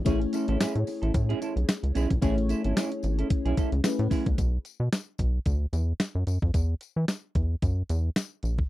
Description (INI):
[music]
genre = early-eighties boogie funk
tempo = 111 BPM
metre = 4/4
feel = swing 56% on 16ths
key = unclear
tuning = A4 = 438 Hz
[part]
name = FM electric piano with soft pad layer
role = accompaniment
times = 0.0-4.4 s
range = A3 to C#5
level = -30 LUFS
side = left 4 dB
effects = chorus
[part]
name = rubbery square bass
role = bass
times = 0.0-8.6 s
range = G#1 to E3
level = -26 LUFS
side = equal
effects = none
[part]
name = semi-hollow electric guitar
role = riff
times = 0.1-4.3 s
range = C#4 to A4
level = -31 LUFS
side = right 7 dB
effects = lush chorus
[part]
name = crisp 8-bit digital drum machine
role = drums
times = 0.1-8.7 s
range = hi-hat, kick drum, snare drum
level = -27 LUFS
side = equal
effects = none
[part]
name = tambourine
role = percussion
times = 0.1-8.6 s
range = none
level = -44 LUFS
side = left 12 dB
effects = none
[sound]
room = little or no reverb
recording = dry, close 1970s-style studio recording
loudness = -25 LUFS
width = side -16 dB against mid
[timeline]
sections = 0.0-4.4 A section; 4.4-8.7 B section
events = none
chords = 0.1 Amaj7; 4.4 Bm; 6.5 Esus2